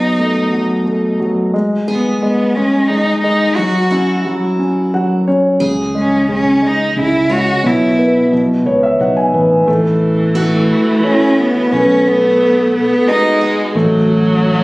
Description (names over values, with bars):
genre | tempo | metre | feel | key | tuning
acoustic folk-pop ballad | 88 BPM | 3/4 | straight | unclear | A4 = 439 Hz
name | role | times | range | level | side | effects
warm cello | melody | 0.0-14.6 s | A3 to F#4 | -15 LUFS | equal | none
warm concert grand piano | accompaniment | 0.0-14.6 s | B2 to G#5 | -14 LUFS | equal | none
picked steel-string acoustic guitar | arpeggios | 1.9-14.1 s | E4 to C#5 | -23 LUFS | right 1 dB | none
fingered electric bass | bass | 5.6-14.6 s | A1 to C#2 | -18 LUFS | equal | none
warm viola | second line | 9.7-14.6 s | E3 to A3 | -17 LUFS | equal | none
room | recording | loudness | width
light reverb | recorded on a phone in the room, studio reverb | -11 LUFS | side -21 dB against mid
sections
0.0-1.5 A section; 1.5-9.7 B section; 9.7-14.6 C section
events
none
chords
0.0 B7; 1.5 N.C.; 3.6 F#5; 5.6 C#5; 7.6 Bsus4; 8.3 Badd9; 9.7 A; 11.7 B7; 13.8 F#m/A